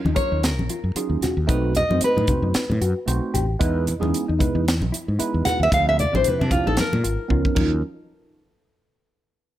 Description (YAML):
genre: electric jazz fusion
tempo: 113 BPM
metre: 4/4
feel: swing 55% on 16ths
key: unclear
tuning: A4 = 438 Hz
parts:
  - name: bright tine electric piano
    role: accompaniment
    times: 0.0-7.8 s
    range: F3 to C5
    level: -27 LUFS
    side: right 4 dB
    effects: phaser
  - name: mellow fretless electric bass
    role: bass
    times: 0.0-7.8 s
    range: Ab1 to C3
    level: -23 LUFS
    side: equal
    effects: none
  - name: mellow electric guitar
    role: stabs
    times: 0.1-7.7 s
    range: C4 to G4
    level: -30 LUFS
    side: left 5 dB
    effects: analog chorus
  - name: congas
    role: percussion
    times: 0.1-7.8 s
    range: none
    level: -28 LUFS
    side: equal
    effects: none
  - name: nylon-string guitar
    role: melody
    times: 0.2-7.7 s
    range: D4 to Gb5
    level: -22 LUFS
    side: equal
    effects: none
  - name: tight funk drum kit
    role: drums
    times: 0.2-7.7 s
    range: crash cymbal, hi-hat, kick drum, snare drum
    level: -24 LUFS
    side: equal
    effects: none
room: light reverb, small room ambience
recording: none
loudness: -19 LUFS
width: side -13 dB against mid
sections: 0.0-7.8 A section; 7.8-9.6 B section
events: nylon-string guitar solo 0.0-7.8; drum fill 7.3-7.8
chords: 0.0 Ebm9; 1.5 B7b9; 3.6 Emaj7; 5.7 Dm9; 6.8 Db9; 7.6 Ebm9; 7.8 N.C.